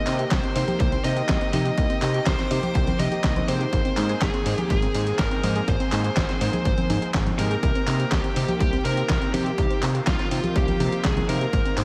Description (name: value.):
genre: italo disco.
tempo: 123 BPM.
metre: 4/4.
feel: straight.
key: C minor.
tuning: A4 = 440 Hz.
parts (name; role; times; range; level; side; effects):
bluesy overdriven lead guitar; melody; 0.0-11.7 s; F4 to Eb5; -31 LUFS; equal; distortion.
lush unison pad; sustained chords; 0.0-11.8 s; Eb3 to D6; -36 LUFS; equal; none.
warm electric grand piano; stabs; 0.0-11.8 s; Ab2 to C5; -35 LUFS; equal; vintage 12-bit sampler grit.
warbly dusty pluck; arpeggios; 0.1-11.8 s; Bb3 to Ab4; -35 LUFS; equal; chorus, tape echo.
fat analog bass; bass; 0.1-11.8 s; Ab1 to C3; -29 LUFS; equal; tube saturation.
dusty soul sampler-style drum kit; drums; 0.1-11.8 s; congas, handclaps, hi-hat, snare drum; -30 LUFS; equal; gated reverb.
electronic kick drum; drums; 0.3-11.6 s; none; -28 LUFS; equal; overdrive.
room: light reverb, digital ambience.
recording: vinyl crackle.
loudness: -23 LUFS.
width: mono.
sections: 0.0-11.8 A section.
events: none.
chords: 0.0 Cm7; 3.7 Abadd9; 7.6 Cm7.